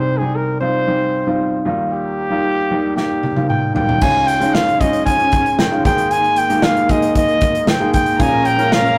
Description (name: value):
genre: piano-driven pop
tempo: 115 BPM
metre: 4/4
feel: straight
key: Ab major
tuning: A4 = 440 Hz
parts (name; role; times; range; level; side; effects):
- warm trumpet; melody; 0.0-9.0 s; G4 to Ab5; -19 LUFS; equal; none
- clear baby grand piano; accompaniment; 0.0-9.0 s; Ab1 to Bb4; -22 LUFS; equal; none
- natural country drum kit; drums; 3.0-9.0 s; crash cymbal, hi-hat, kick drum, snare drum, toms; -21 LUFS; equal; none
- muted studio string section; sustained chords; 4.0-9.0 s; Ab2 to Db4; -28 LUFS; equal; none
- warm studio violin section; second line; 8.2-9.0 s; Bb4 to Bb5; -24 LUFS; equal; none
room: wet small room reverb, RT60 0.6 s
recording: rough rehearsal-room recording, tube saturation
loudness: -16 LUFS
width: mono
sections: 0.0-4.0 A section; 4.0-9.0 B section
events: drum fill 3.0-4.0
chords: 0.0 Cm; 1.7 Ebadd9; 4.0 Dbadd9; 5.8 Absus2; 8.2 Bbm7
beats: 0.35 0.88 1.40 | 1.93 2.45 2.97 3.50 | 4.02 4.54 5.07 5.59 | 6.11 6.63 7.15 7.68 | 8.20 8.72